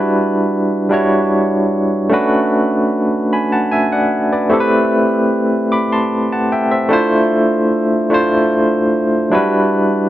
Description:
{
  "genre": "R&B",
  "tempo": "50 BPM (dotted quarters)",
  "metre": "6/8",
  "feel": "straight",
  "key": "A dorian",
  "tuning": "A4 = 442 Hz",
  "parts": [
    { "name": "barky tine electric piano", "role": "solo", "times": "0.0-10.1 s", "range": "F#3 to D6", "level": "-13 LUFS", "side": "equal", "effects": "medium tremolo, tape echo" }
  ],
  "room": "moderate plate reverb, RT60 2.4 s",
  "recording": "none",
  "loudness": "-13 LUFS",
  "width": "side -13 dB against mid",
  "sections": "0.0-10.1 A section",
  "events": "none",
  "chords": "0.0 Em9; 2.1 Bm9; 4.5 Am9; 6.9 Dm9; 9.3 Em9"
}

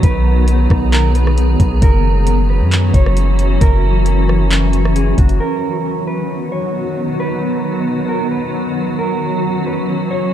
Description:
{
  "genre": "hip hop, atmospheric cloud-rap",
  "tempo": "134 BPM",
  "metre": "4/4",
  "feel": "half-time",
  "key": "B major",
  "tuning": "A4 = 437 Hz",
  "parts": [
    { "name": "mellow electric guitar", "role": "melody", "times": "0.0-10.3 s", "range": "F#4 to C#5", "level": "-23 LUFS", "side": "right 4 dB", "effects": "low-pass filter, ping-pong delay" },
    { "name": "granular cloud pad", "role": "sustained chords", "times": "0.0-10.3 s", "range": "D#3 to G#4", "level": "-18 LUFS", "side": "equal", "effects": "built-in reverb, sidechain pumping" },
    { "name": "long sustained 808-style bass", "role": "bass", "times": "0.0-5.4 s", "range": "F#1 to F#2", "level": "-13 LUFS", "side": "equal", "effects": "none" },
    { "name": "smooth R&B drum kit", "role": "drums", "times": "0.0-5.4 s", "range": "handclaps, hi-hat, kick drum, rim click", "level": "-15 LUFS", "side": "equal", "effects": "none" },
    { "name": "wind-like tuned noise texture", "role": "texture", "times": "0.0-10.3 s", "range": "B3 to A#5", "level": "-29 LUFS", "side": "right 1 dB", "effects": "built-in reverb" }
  ],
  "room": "little or no reverb",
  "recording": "dark, warm production",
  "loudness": "-13 LUFS",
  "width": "side -11 dB against mid",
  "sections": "0.0-5.4 A section; 5.4-10.3 B section",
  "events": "none",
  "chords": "0.0 Bmaj7; 1.8 F#7; 5.4 Bmaj7; 9.0 F#7"
}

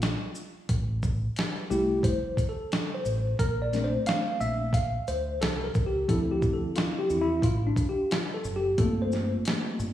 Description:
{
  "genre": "hip hop, jazz-hop",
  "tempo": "89 BPM",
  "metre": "4/4",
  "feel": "swing 61% on 16ths",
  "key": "D minor",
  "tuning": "A4 = 439 Hz",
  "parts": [
    { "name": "mellow tine electric piano", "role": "accompaniment", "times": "0.0-9.9 s", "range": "F3 to F5", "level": "-28 LUFS", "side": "left 1 dB", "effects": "medium stereo tremolo" },
    { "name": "deep dub fingered electric bass", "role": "bass", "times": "0.0-9.9 s", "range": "F1 to E2", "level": "-31 LUFS", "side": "equal", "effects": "none" },
    { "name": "dusty soul sampler-style drum kit", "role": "drums", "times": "0.0-9.9 s", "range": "hi-hat, kick drum, shaker, snare drum", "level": "-29 LUFS", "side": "equal", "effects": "none" }
  ],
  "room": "moderate lush hall reverb, RT60 1.7 s",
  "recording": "dreamy mix soaked in reverb, studio reverb",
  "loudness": "-25 LUFS",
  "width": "side -12 dB against mid",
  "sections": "0.0-9.9 A section",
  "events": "tine electric piano solo 0.0-9.9",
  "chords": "0.0 Gm7 (rootless); 0.7 Fmaj9/A (rootless); 3.4 Bbmaj9; 6.1 Dm9; 8.8 Gm11"
}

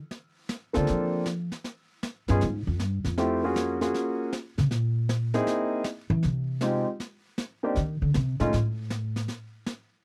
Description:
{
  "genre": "jazz piano trio",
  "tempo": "157 BPM",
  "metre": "4/4",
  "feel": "swing 66% on 8ths",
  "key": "F minor",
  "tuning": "A4 = 435 Hz",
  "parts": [
    { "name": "brushed snare drum and snare drum", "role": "drums", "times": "0.1-10.0 s", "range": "none", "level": "-37 LUFS", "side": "equal", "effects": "none" },
    { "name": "clear concert grand piano", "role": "melody", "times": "0.7-8.5 s", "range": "Ab3 to A4", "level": "-29 LUFS", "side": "equal", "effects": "none" },
    { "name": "upright bass", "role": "bass", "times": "0.8-9.3 s", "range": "F2 to F3", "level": "-29 LUFS", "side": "equal", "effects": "none" }
  ],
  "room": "little or no reverb",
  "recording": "dry, close 1970s-style studio recording",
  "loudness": "-28 LUFS",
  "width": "mono",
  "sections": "0.0-6.2 A section; 6.2-10.0 A section",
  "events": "upright bass solo 0.0-10.0",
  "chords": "0.1 Bbmaj9; 1.6 Db (rootless); 3.2 Gbmaj9; 4.7 C7alt; 6.2 F7sus2 (rootless); 7.8 Cm7; 8.5 N.C."
}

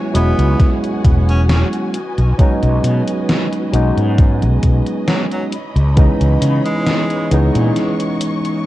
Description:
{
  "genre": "vaporwave",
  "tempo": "67 BPM",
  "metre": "4/4",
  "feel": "swing 53% on 16ths",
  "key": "unclear",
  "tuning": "A4 = 440 Hz",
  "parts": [
    { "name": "barky tine electric piano", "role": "accompaniment", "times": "0.0-8.7 s", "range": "E3 to E4", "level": "-18 LUFS", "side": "equal", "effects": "overdrive, lush chorus, tape echo" },
    { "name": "warm studio string section", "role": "sustained chords", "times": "0.0-8.7 s", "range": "E3 to C#6", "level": "-28 LUFS", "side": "equal", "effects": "none" },
    { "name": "fretless electric bass", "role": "bass", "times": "0.1-7.7 s", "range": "E1 to C#3", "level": "-14 LUFS", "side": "equal", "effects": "none" },
    { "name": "gated 80s digital drum machine", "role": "drums", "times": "0.1-8.6 s", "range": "hi-hat, snare drum", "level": "-22 LUFS", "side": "equal", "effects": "gated reverb, gated reverb snare" },
    { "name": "edgy tenor saxophone", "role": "melody", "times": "0.2-7.3 s", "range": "F#3 to C#4", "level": "-27 LUFS", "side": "equal", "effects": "tape echo" },
    { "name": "electronic kick drum", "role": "drums", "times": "0.6-6.2 s", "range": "none", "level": "-12 LUFS", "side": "equal", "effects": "overdrive" }
  ],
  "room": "light reverb",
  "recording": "dark, warm production, cassette tape",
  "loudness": "-13 LUFS",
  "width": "side -15 dB against mid",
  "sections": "0.0-8.7 A section",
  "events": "break 7.8-8.7",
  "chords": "0.0 E69; 1.9 B6; 5.5 C#m9"
}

